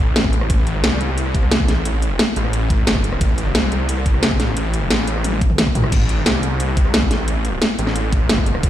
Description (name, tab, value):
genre	dark technical drum and bass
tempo	177 BPM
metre	4/4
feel	straight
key	A minor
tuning	A4 = 440 Hz
part	wide detuned saw bass	bass	0.0-8.7 s	G1 to C2	-19 LUFS	equal	chorus, overdrive
part	drum and bass drum kit	drums	0.2-8.7 s	crash cymbal, hi-hat, rim click, snare drum, toms	-20 LUFS	equal	none
part	electronic kick drum	drums	0.2-8.7 s	none	-18 LUFS	equal	none
room	light reverb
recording	played on a big sound system in a bare room, large studio reverb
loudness	-15 LUFS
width	side -12 dB against mid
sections	0.0-5.9 A section; 5.9-8.7 A section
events	drop 0.0-5.9, 5.9-8.7; drum fill 5.2-5.9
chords	none